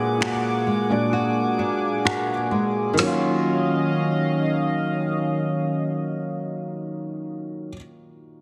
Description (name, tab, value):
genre	contemporary R&B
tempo	65 BPM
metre	4/4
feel	straight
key	Eb minor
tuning	A4 = 440 Hz
part	felt-muted upright piano	accompaniment	0.0-8.4 s	Bb2 to D5	-31 LUFS	equal	none
part	chorused pulse-width pad	sustained chords	0.0-7.4 s	Eb3 to D6	-28 LUFS	equal	none
part	flamenco guitar	arpeggios	0.0-7.8 s	Bb2 to Gb4	-28 LUFS	equal	delay
part	smooth R&B drum kit	drums	0.2-3.2 s	finger snaps, hi-hat, snare drum	-28 LUFS	equal	vintage 12-bit sampler grit
room	moderate plate reverb, RT60 2.1 s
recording	heavily compressed radio sound, multiband compression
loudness	-23 LUFS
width	mono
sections	0.0-3.0 A section; 3.0-6.7 B section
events	break 0.0-3.0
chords	0.0 Bb7b9b13; 3.0 Ebm9